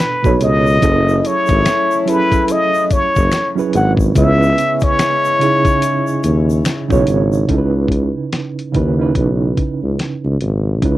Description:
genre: R&B, neo-soul.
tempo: 72 BPM.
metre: 4/4.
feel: swing 60% on 16ths.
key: C# minor.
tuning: A4 = 439 Hz.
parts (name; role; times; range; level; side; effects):
trumpet with plunger mute; melody; 0.0-6.5 s; B4 to F#5; -16 LUFS; left 1 dB; none.
reed electric piano; accompaniment; 0.0-11.0 s; B2 to D5; -19 LUFS; right 5 dB; overdrive, fast tremolo, cassette tape.
dusty soul sampler-style drum kit; drums; 0.0-11.0 s; hi-hat, kick drum, snare drum; -18 LUFS; left 1 dB; cassette tape.
mellow tuba; bass; 0.2-11.0 s; F#1 to D#2; -15 LUFS; left 1 dB; tube saturation.
tube shaker and finger snaps; percussion; 0.2-7.5 s; none; -34 LUFS; left 11 dB; none.
brilliant trombone section; stabs; 0.8-7.0 s; G#3 to E4; -24 LUFS; left 9 dB; cassette tape.
room: light reverb.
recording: home recording on cassette.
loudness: -12 LUFS.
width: side -15 dB against mid.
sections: 0.0-7.5 A section; 7.5-11.0 B section.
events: none.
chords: 0.0 Bm9; 0.8 F#m9; 4.2 C#m9.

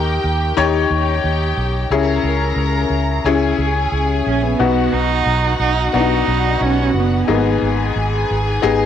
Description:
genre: piano-driven pop.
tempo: 89 BPM.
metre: 4/4.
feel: straight.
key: B major.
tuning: A4 = 441 Hz.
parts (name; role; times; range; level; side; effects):
warm studio violin section; second line; 0.0-8.9 s; F#4 to A#5; -23 LUFS; right 1 dB; cassette tape.
bright upright piano; accompaniment; 0.0-8.9 s; G#2 to C#5; -18 LUFS; left 8 dB; cassette tape.
vintage muted fingered electric bass; bass; 0.0-8.9 s; F#1 to D#2; -20 LUFS; right 1 dB; none.
warm cello; melody; 4.3-7.6 s; B3 to D#4; -19 LUFS; right 8 dB; cassette tape.
room: moderate spring reverb, RT60 2.6 s.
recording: home recording on cassette.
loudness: -15 LUFS.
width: side -9 dB against mid.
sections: 0.0-8.9 A section.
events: none.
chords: 0.0 D#; 1.9 C#m; 4.6 B; 7.3 G#m.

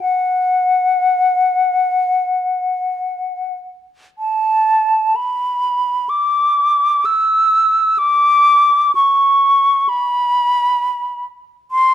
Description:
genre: classical, free, expressive piece for unaccompanied flute.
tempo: free time.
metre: none.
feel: none.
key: B minor from 4.2 s.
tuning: A4 = 437 Hz.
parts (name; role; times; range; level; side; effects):
mellow silver concert flute; solo; 0.0-11.9 s; F#5 to E6; -13 LUFS; left 1 dB; none.
room: moderate large studio reverb, RT60 1.3 s.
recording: dark, warm production.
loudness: -13 LUFS.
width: side -11 dB against mid.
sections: 0.0-11.9 A section.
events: none.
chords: none.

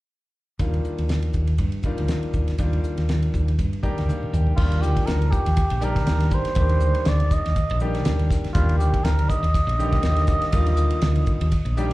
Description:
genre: electric jazz fusion.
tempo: 121 BPM.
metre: 4/4.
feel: swing 56% on 16ths.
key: Eb major.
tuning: A4 = 440 Hz.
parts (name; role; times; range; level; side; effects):
clear concert grand piano; accompaniment; 0.6-11.9 s; D3 to Bb5; -28 LUFS; left 2 dB; plate reverb, slapback echo.
woody fretless electric bass; bass; 0.6-11.9 s; Bb1 to G2; -21 LUFS; equal; none.
damped 70s drum kit; drums; 0.6-11.9 s; crash cymbal, hi-hat, kick drum, ride cymbal, snare drum, toms; -24 LUFS; equal; none.
trumpet with cup mute; melody; 4.6-11.9 s; F4 to Eb5; -27 LUFS; right 1 dB; slapback echo, plate reverb.
room: little or no reverb.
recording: live gig heard through the venue's PA, club reverb.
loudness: -19 LUFS.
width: side -18 dB against mid.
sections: 0.6-4.6 A section; 4.6-11.9 B section.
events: grand piano fill 3.6-4.6, 11.5-11.9; drum fill 4.1-4.6.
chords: 0.6 Ebmaj9.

